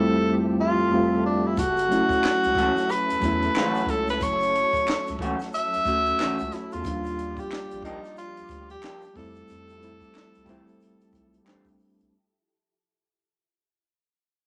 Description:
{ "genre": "R&B, neo-soul", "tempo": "91 BPM", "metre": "4/4", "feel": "swing 61% on 16ths", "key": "unclear", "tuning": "A4 = 440 Hz", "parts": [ { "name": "clear tenor saxophone", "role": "melody", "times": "0.0-11.5 s", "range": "D4 to E5", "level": "-27 LUFS", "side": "equal", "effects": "none" }, { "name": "mellow reed electric piano", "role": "accompaniment", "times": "0.0-12.1 s", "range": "F2 to F#4", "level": "-29 LUFS", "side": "equal", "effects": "fast tremolo" }, { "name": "soft string machine", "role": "sustained chords", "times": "0.0-12.1 s", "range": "F3 to E5", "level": "-39 LUFS", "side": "equal", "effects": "ensemble chorus" }, { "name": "round analog bass", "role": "bass", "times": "1.6-12.1 s", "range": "F#1 to F2", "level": "-39 LUFS", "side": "equal", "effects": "none" }, { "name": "compact cocktail drum kit", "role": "drums", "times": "1.6-12.1 s", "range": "handclaps, hi-hat, kick drum, snare drum", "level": "-35 LUFS", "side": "equal", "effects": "none" }, { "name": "egg shaker and finger snaps", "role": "percussion", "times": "1.6-12.1 s", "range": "none", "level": "-45 LUFS", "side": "equal", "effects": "none" }, { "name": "electric guitar through a small old amp", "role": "second line", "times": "2.6-11.7 s", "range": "E3 to G4", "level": "-33 LUFS", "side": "equal", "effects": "none" } ], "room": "moderate large studio reverb, RT60 1.1 s", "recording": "none", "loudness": "-24 LUFS", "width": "mono", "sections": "0.0-12.1 A section", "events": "fade-out 0.0-12.1", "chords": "0.0 Fmaj9; 1.6 F#m7; 6.8 Ebmaj9; 9.2 Fmaj9", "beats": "0.26 0.91 | 1.57 2.23 2.89 3.55 | 4.21 4.87 5.53 6.19 | 6.85 7.51 8.17 8.83 | 9.48 10.14 10.80 11.46" }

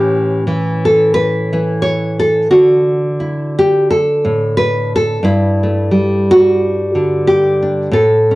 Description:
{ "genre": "folk, solo fingerstyle acoustic guitar", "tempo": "89 BPM", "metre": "4/4", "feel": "swing 56% on 8ths", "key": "unclear", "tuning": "A4 = 439 Hz", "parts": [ { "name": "nylon-string guitar", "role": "solo", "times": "0.0-8.4 s", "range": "G2 to C#5", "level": "-11 LUFS", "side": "equal", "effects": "cassette tape" } ], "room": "light reverb, small room ambience", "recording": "home recording on cassette", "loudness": "-11 LUFS", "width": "side -19 dB against mid", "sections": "0.0-8.4 A section", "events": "none", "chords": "0.0 A; 2.5 Dadd9; 5.2 Gsus2", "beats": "0.48 1.16 1.83 | 2.51 3.19 3.86 4.54 | 5.22 5.89 6.57 7.25 | 7.93" }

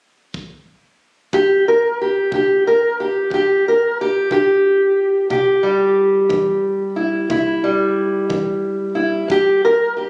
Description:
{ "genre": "acoustic country blues, solo or duo", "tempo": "60 BPM (dotted quarters)", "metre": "12/8", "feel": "straight", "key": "unclear", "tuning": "A4 = 440 Hz", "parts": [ { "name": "kick drum", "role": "drums", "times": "0.3-9.4 s", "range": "none", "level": "-36 LUFS", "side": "equal", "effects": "none" }, { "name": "fingerpicked steel-string acoustic guitar", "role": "melody", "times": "1.3-10.1 s", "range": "G2 to Bb4", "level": "-17 LUFS", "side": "equal", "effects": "none" } ], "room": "little or no reverb", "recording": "recorded on a phone in the room, studio reverb", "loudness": "-17 LUFS", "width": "mono", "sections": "0.0-1.3 A section; 1.3-10.1 B section", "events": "none", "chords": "0.0 N.C.; 1.3 G5; 5.3 C; 9.3 N.C.", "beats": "0.33 | 1.32 2.31 3.31 4.30 | 5.30 6.29 7.29 8.28 | 9.28" }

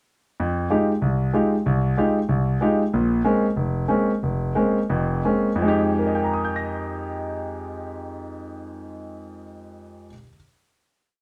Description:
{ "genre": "jazz", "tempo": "161-190 BPM", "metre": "4/4", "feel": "swing 61% on 8ths", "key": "F minor", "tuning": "A4 = 441 Hz", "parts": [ { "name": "clear concert grand piano", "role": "solo", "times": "0.4-10.3 s", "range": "F1 to Bb6", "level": "-23 LUFS", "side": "equal", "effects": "none" } ], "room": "wet studio ambience, RT60 0.5 s", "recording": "band playing live in one room", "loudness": "-22 LUFS", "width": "mono", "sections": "0.4-5.6 A section; 5.6-8.6 final chord", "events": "slowing down 2.9-5.6", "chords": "0.4 Fm9; 2.9 Bbm9; 5.6 Fm9", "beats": "| 0.39 0.71 1.02 1.34 | 1.66 1.97 2.29 2.61 | 2.92 3.24 3.56 3.88 | 4.21 4.55 4.90 5.25 | 5.62 5.99 6.37 6.74 | 7.11 7.49 7.86 8.23" }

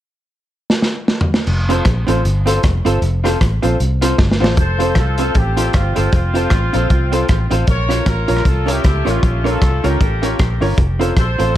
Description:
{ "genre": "ska", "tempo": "155 BPM", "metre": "4/4", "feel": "swing 58% on 8ths", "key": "F major", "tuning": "A4 = 439 Hz", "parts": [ { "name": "crunchy breakbeat drum kit", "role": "drums", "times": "0.7-11.5 s", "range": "crash cymbal, hi-hat, kick drum, rim click, snare drum, toms", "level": "-17 LUFS", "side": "equal", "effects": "none" }, { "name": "vintage muted fingered electric bass", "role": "bass", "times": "1.5-11.5 s", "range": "F1 to Db2", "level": "-17 LUFS", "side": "equal", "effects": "none" }, { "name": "vintage hollow-body jazz guitar", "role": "accompaniment", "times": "1.7-11.5 s", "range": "C4 to Db5", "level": "-22 LUFS", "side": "right 4 dB", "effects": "tape echo" }, { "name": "clear upright piano", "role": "stabs", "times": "1.7-11.5 s", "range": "F4 to Db5", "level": "-24 LUFS", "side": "left 4 dB", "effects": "tape echo" }, { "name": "warm horn section", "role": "melody", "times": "4.6-11.5 s", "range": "C4 to Db5", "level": "-22 LUFS", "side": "equal", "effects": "tape echo" } ], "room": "light reverb", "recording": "none", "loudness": "-13 LUFS", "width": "side -13 dB against mid", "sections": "0.0-1.5 A section; 1.5-4.6 B section; 4.6-11.6 C section", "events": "drum fill 0.7-1.5, 4.2-4.6", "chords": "0.0 N.C.; 1.5 F; 7.7 Bbm; 10.8 F", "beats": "0.31 0.70 1.09 | 1.47 1.86 2.25 2.64 | 3.02 3.41 3.80 4.19 | 4.57 4.96 5.35 5.74 | 6.13 6.51 6.90 7.29 | 7.68 8.07 8.45 8.84 | 9.23 9.62 10.01 10.39 | 10.78 11.17" }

